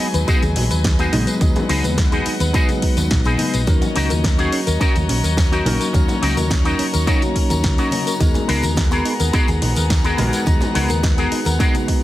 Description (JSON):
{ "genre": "nu-disco, nu disco", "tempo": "106 BPM", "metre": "4/4", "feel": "straight", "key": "Eb minor", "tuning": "A4 = 444 Hz", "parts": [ { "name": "bell-like tine electric piano", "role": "accompaniment", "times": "0.0-12.0 s", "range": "F#3 to Bb5", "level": "-24 LUFS", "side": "equal", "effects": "phaser, slapback echo" }, { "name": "rich chamber string section", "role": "sustained chords", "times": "0.0-12.0 s", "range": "Gb3 to Bb5", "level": "-27 LUFS", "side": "left 3 dB", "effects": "sidechain pumping" }, { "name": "soft round pluck", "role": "arpeggios", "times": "0.0-12.0 s", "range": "Db4 to B4", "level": "-29 LUFS", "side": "left 1 dB", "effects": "chorus, sidechain pumping, tape echo" }, { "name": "electric guitar with an envelope filter", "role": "riff", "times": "0.0-11.9 s", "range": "B3 to Bb4", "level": "-23 LUFS", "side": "left 1 dB", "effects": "analog chorus" }, { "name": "hollow-body short-scale fingered electric bass", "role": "bass", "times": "0.1-11.6 s", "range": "Bb1 to D#2", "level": "-21 LUFS", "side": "equal", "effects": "none" }, { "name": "house drum kit", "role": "drums", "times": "0.1-12.0 s", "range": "hi-hat, snare drum, tambourine", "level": "-26 LUFS", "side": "left 1 dB", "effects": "studio reverb" }, { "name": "tambourine and congas", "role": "percussion", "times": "0.1-11.9 s", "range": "none", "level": "-29 LUFS", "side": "right 1 dB", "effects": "none" }, { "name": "electronic kick drum", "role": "drums", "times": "0.3-12.0 s", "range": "none", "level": "-18 LUFS", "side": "equal", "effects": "studio reverb" } ], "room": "digital ambience", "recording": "heavily compressed radio sound", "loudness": "-15 LUFS", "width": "side -15 dB against mid", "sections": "0.0-12.0 A section", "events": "none", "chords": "0.0 B6; 3.7 Ebm7; 8.2 Abm9", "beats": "0.28 0.84 | 1.41 1.98 2.54 3.11 | 3.67 4.24 4.81 5.37 | 5.94 6.50 7.07 7.64 | 8.20 8.77 9.33 9.90 | 10.47 11.03 11.60" }